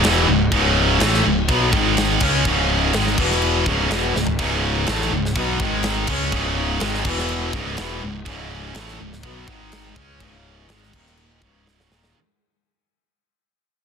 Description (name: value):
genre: heavy metal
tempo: 124 BPM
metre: 4/4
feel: straight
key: C# minor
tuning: A4 = 440 Hz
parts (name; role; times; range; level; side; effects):
- heavy high-gain guitar; riff; 0.0-12.1 s; C#2 to C#4; -22 LUFS; right 12 dB; distortion
- tight distorted guitar; riff; 0.0-12.1 s; C#2 to C#4; -24 LUFS; left 15 dB; distortion
- fuzz picked electric bass; bass; 0.0-12.1 s; C#1 to C#2; -24 LUFS; equal; overdrive
- tight metal drum kit; drums; 0.0-12.1 s; crash cymbal, kick drum, snare drum, splash cymbal, toms; -24 LUFS; equal; soft clipping on kick
room: little or no reverb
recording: dense, heavily limited modern master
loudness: -17 LUFS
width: side -6 dB against mid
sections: 0.0-12.1 A section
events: fade-out 0.0-12.1; drum fill 4.1, 11.7-12.1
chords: 0.0 C#m; 1.7 G#5; 2.2 C#5; 3.2 E5; 3.7 C#m; 5.6 G#5; 6.1 C#5; 7.0 E5; 7.5 C#m; 9.5 G#5; 10.0 C#5; 10.9 D#5; 11.4 C#5